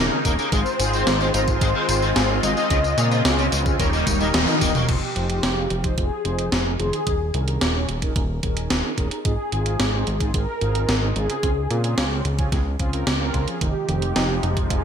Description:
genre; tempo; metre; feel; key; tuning
synthwave; 110 BPM; 4/4; straight; F minor; A4 = 441 Hz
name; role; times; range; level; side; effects
soft supersaw; sustained chords; 0.0-4.9, 13.6-14.8 s; C3 to F4; -26 LUFS; equal; ensemble chorus
mellow synth brass; stabs; 0.0-13.6 s; Ab2 to F5; -29 LUFS; left 1 dB; chorus, cassette tape, digital delay
fat analog bass; bass; 0.0-14.8 s; Eb1 to Bb2; -24 LUFS; equal; none
electronic kick drum; drums; 0.2-14.8 s; none; -24 LUFS; equal; none
gated 80s digital drum machine; drums; 0.2-14.8 s; crash cymbal, hi-hat, snare drum, tambourine, toms; -24 LUFS; equal; gated reverb, gated reverb snare
biting overdriven guitar; riff; 0.3-4.9 s; Db3 to Ab4; -28 LUFS; left 1 dB; ensemble chorus, digital delay
mellow synth brass; melody; 0.5-14.8 s; G4 to Eb5; -27 LUFS; left 1 dB; chorus, digital delay
analog pluck; arpeggios; 13.6-14.8 s; Eb3 to F4; -29 LUFS; right 5 dB; chorus, digital delay
room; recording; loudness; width
moderate plate reverb, RT60 2.0 s; bright 1980s-style digital production; -19 LUFS; side -7 dB against mid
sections
0.0-4.9 A section; 4.9-14.8 B section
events
drum fill 4.1-4.9; band accent 4.3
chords
0.0 Eb7sus4; 0.5 Ab6; 2.7 Dbmaj7; 3.8 Eb7; 4.9 Fm7; 7.1 Eb7sus4; 9.2 Ab6; 11.4 Dbmaj7; 13.6 Fm7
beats
| 0.52 1.07 1.61 2.16 | 2.71 3.25 3.80 4.34 | 4.89 5.43 5.98 6.52 | 7.07 7.61 8.16 8.71 | 9.25 9.80 10.34 10.89 | 11.43 11.98 12.52 13.07 | 13.61 14.16 14.71

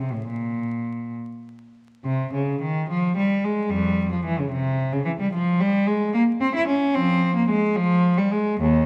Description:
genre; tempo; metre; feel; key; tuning
classical, baroque-style suite movement for unaccompanied cello; 66-75 BPM (dotted quarters); 6/8; rubato; F minor; A4 = 444 Hz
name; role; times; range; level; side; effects
rich cello; solo; 0.0-8.9 s; Eb2 to E4; -23 LUFS; equal; none
room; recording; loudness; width
moderate scoring stage reverb, RT60 1.6 s; dark, warm production, vinyl crackle; -23 LUFS; mono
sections
0.0-2.0 A section; 2.0-8.9 A section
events
none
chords
none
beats
| 0.28 1.16 | 2.05 2.88 | 3.70 4.51 | 5.33 6.13 | 6.94 7.75 | 8.60

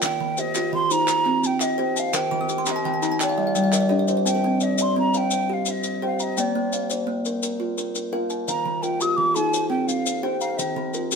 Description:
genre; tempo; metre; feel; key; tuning
southern african traditional, mbira-style interlocking cycle; 114 BPM (dotted quarters); 12/8; straight; C equiheptatonic; A4 = 438 Hz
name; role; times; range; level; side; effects
mellow hollow jazz flute; melody; 0.0-11.1 s; D5-31c to Eb6+48c; -25 LUFS; right 2 dB; none
kalimba; arpeggios; 0.0-11.2 s; Eb3+43c to Bb5+29c; -25 LUFS; left 4 dB; none
kalimba; arpeggios; 0.0-11.2 s; Eb3+43c to Eb6+43c; -26 LUFS; right 5 dB; none
group handclap; percussion; 0.0-3.9 s; none; -31 LUFS; right 4 dB; none
maracas; percussion; 0.0-11.2 s; none; -29 LUFS; left 5 dB; none
room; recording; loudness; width
moderate stone room reverb, RT60 1.1 s; band playing live in one room; -20 LUFS; side -5 dB against mid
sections
0.0-4.3 A section; 4.3-11.2 A section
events
kalimba fill 2.1-4.3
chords
0.0 Eb; 1.1 Cm; 2.1 Eb; 3.2 Gm; 4.3 Cm; 6.4 Bb; 8.5 Eb; 9.5 Cm; 10.6 Eb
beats
| 0.03 0.56 1.08 1.61 | 2.14 2.67 3.20 3.73 | 4.26 4.79 5.32 5.84 | 6.37 6.90 7.43 7.96 | 8.48 9.01 9.54 10.06 | 10.59 11.12

